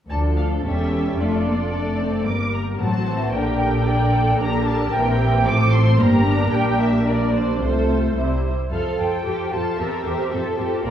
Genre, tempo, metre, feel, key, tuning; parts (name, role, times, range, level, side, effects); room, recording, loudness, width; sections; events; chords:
quick classical-period movement for string orchestra; 112 BPM; 2/4; straight; F major from 4.4 s; A4 = 440 Hz
muted studio violin section; melody; 0.1-10.9 s; C5 to D6; -26 LUFS; equal
muted studio violin section; second line; 0.1-10.9 s; F4 to D5; -27 LUFS; right 2 dB
muted symphonic viola section; accompaniment; 0.1-10.9 s; D3 to G4; -24 LUFS; left 1 dB
muted studio cello section; bass; 0.1-10.9 s; D2 to A4; -25 LUFS; equal
muted studio double bass section; bass; 0.1-10.9 s; E1 to F2; -23 LUFS; equal
wet stone room reverb, RT60 1.2 s; heard from further back in the room; -18 LUFS; side -10 dB against mid
0.1-8.7 A section; 8.7-10.9 B section
0.1 Dm; 0.6 C#dim/E; 1.2 Dm/F; 2.3 Gm; 2.8 F#dim/A; 3.3 Gm/Bb; 4.9 C7/Bb; 5.4 F/A; 6.0 Gm; 6.5 Gm/Bb; 7.6 F/C; 8.2 C; 8.7 F; 9.8 C7; 10.3 F